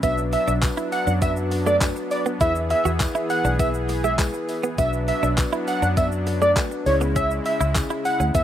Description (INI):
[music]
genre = dance-pop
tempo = 101 BPM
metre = 4/4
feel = straight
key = B dorian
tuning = A4 = 438 Hz
[part]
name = wide unison lead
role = melody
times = 0.0-8.4 s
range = C#5 to F#5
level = -23 LUFS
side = right 1 dB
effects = tape echo
[part]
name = mellow tine electric piano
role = accompaniment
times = 0.0-8.4 s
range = B3 to D5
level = -29 LUFS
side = left 3 dB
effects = sidechain pumping
[part]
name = soft supersaw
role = sustained chords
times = 0.0-8.4 s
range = C#3 to G#4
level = -31 LUFS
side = equal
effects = sidechain pumping
[part]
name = direct-recorded clean electric guitar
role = riff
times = 0.0-8.4 s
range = G#3 to F#4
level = -29 LUFS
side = right 4 dB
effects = analog chorus
[part]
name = vintage muted fingered electric bass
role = bass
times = 0.0-8.4 s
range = B1 to F#2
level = -25 LUFS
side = equal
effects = sidechain pumping
[part]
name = crisp 8-bit digital drum machine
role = drums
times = 0.0-8.4 s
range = handclaps, hi-hat, kick drum, shaker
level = -25 LUFS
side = equal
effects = overdrive
[part]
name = tambourine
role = percussion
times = 0.0-8.4 s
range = none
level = -41 LUFS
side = left 3 dB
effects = none
[sound]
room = little or no reverb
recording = rough home demo mix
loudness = -19 LUFS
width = side -11 dB against mid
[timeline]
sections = 0.0-8.4 A section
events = none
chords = 0.0 Bm; 2.4 E; 4.8 Bm; 6.9 C#m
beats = | 0.03 0.63 1.22 1.81 | 2.41 3.00 3.60 4.19 | 4.78 5.38 5.97 6.57 | 7.16 7.75 8.35